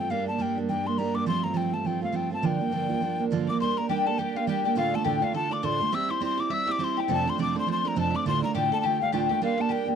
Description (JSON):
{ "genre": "celtic folk, Celtic reel", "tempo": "206 BPM", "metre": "4/4", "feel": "swing 58% on 8ths", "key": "G dorian", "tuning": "A4 = 439 Hz", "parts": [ { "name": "breathy hollow mid whistle", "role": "melody", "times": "0.0-9.9 s", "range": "F5 to E6", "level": "-29 LUFS", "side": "left 4 dB", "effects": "none" }, { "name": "picked steel-string acoustic guitar", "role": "accompaniment", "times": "0.0-10.0 s", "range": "D2 to G4", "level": "-27 LUFS", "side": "right 7 dB", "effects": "none" }, { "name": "clear cello", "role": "drone", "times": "0.0-3.6 s", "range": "G2", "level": "-37 LUFS", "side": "left 2 dB", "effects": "stereo widening" }, { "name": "mandolin", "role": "second line", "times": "3.5-9.9 s", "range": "F4 to E5", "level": "-31 LUFS", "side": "left 15 dB", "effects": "slapback echo" } ], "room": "light reverb", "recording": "dry, close 1970s-style studio recording", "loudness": "-24 LUFS", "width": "side -7 dB against mid", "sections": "0.0-3.6 A section; 3.6-10.0 A section", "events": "none", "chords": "0.1 Gm; 1.3 F; 2.4 Gm7; 3.6 Gm; 4.8 Dm; 5.9 C/G; 7.1 F6; 8.3 Dm; 9.4 Gm", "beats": "| 0.11 0.40 0.69 0.98 | 1.27 1.56 1.85 2.15 | 2.44 2.73 3.02 3.31 | 3.60 3.89 4.18 4.47 | 4.76 5.05 5.35 5.64 | 5.93 6.22 6.51 6.80 | 7.09 7.38 7.67 7.96 | 8.25 8.54 8.83 9.12 | 9.41 9.70" }